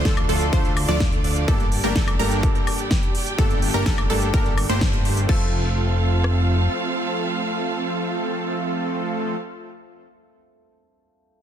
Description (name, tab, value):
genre	EDM, festival progressive house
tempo	126 BPM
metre	4/4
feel	straight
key	F major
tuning	A4 = 439 Hz
part	clear concert grand piano	accompaniment	0.0-11.4 s	G2 to A4	-31 LUFS	equal	sidechain pumping, digital delay
part	rich studio string section	sustained chords	0.0-9.3 s	C4 to C6	-30 LUFS	right 3 dB	sidechain pumping
part	wide unison pluck	arpeggios	0.0-9.3 s	A4 to Bb5	-30 LUFS	moving between left 2 dB and right 4 dB	auto-pan, sidechain pumping, digital delay
part	supersaw stab	riff	0.0-9.3 s	F3 to D5	-26 LUFS	right 1 dB	sidechain pumping, digital delay
part	fat analog bass	bass	0.0-6.7 s	F1 to D2	-23 LUFS	equal	sidechain pumping
part	big-room dance drum kit	drums	0.1-6.4 s	kick drum, rim click	-21 LUFS	equal	small room ambience, soft clipping on snare
part	big-room dance drum kit	drums	0.1-5.4 s	crash cymbal, hi-hat, snare drum, woodblock	-28 LUFS	equal	small room ambience
room	light reverb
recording	dense, heavily limited modern master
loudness	-19 LUFS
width	side -10 dB against mid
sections	0.0-5.3 A section; 5.3-9.1 B section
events	drop 0.0-5.3; band accent 4.8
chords	0.0 Dm; 1.5 Gmadd9; 5.3 F